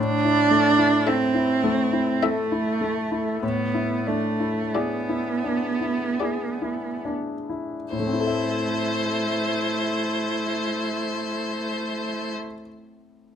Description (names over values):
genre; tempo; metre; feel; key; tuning
classical, slow romantic movement for piano quartet; 33-57 BPM; 3/4; rubato; A minor; A4 = 440 Hz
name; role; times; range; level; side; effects
rich cello; second line; 0.0-12.3 s; A3 to D4; -24 LUFS; right 3 dB; none
clear baby grand piano; accompaniment; 0.0-13.4 s; A2 to E5; -27 LUFS; left 4 dB; none
clear violin; melody; 1.1-12.3 s; C5 to E5; -28 LUFS; left 5 dB; none
warm viola; accompaniment; 1.1-12.3 s; E4; -31 LUFS; equal; none
room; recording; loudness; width
moderate stone room reverb, RT60 1.2 s; close, detailed microphones, lossy compression artefacts; -22 LUFS; side -8 dB against mid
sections
0.0-7.9 A section; 7.9-13.0 B section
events
slowing down 0.0-7.9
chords
0.0 Am; 3.4 E7/A; 7.9 Am